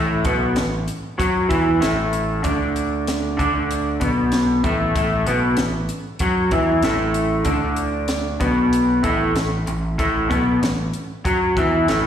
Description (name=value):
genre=indie rock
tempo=96 BPM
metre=4/4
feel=straight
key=unclear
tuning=A4 = 437 Hz
part: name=electric guitar through a small old amp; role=riff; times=0.0-12.1 s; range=A2 to F#4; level=-19 LUFS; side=equal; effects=slapback echo
part: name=growling picked electric bass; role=bass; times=0.0-12.1 s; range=A1 to F#2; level=-24 LUFS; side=equal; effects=overdrive
part: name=compact cocktail drum kit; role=drums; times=0.2-12.0 s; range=hi-hat, kick drum, snare drum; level=-26 LUFS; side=equal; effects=slapback echo
room=light reverb, small room ambience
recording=live gig heard through the venue's PA, recital hall reverb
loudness=-18 LUFS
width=side -9 dB against mid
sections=0.0-12.1 A section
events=none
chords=0.0 A5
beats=0.56 1.19 1.82 | 2.44 3.07 3.70 4.33 | 4.96 5.58 6.21 6.84 | 7.47 8.10 8.73 9.36 | 9.99 10.62 11.24 11.88